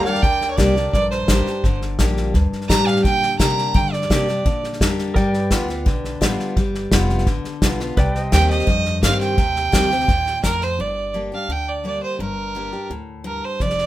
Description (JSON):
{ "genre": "honky-tonk and classic country", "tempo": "170 BPM", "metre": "4/4", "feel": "straight", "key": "G minor", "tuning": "A4 = 440 Hz", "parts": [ { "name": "clear fiddle", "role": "melody", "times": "0.0-4.6, 8.3-13.9 s", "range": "Bb4 to Bb5", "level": "-21 LUFS", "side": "right 3 dB", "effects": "none" }, { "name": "picked steel-string acoustic guitar", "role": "accompaniment", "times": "0.0-13.9 s", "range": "F2 to G4", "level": "-24 LUFS", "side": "left 2 dB", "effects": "none" }, { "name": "pedal steel guitar", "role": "sustained chords", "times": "0.0-10.8 s", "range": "Bb4 to G5", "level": "-29 LUFS", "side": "equal", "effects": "none" }, { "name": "upright bass", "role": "bass", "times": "0.0-13.9 s", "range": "F1 to D3", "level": "-24 LUFS", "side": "equal", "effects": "none" }, { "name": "unplugged drum kit", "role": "drums", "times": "0.1-10.7, 13.6-13.8 s", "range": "hi-hat, kick drum, snare drum", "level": "-20 LUFS", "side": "equal", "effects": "none" } ], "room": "light reverb", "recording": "minimal, uncompressed stereo recording", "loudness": "-17 LUFS", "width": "side -14 dB against mid", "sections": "0.0-10.8 A section; 10.8-13.9 B section", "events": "none", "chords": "0.0 Gm; 5.2 G7; 8.0 Cm; 10.8 Gm" }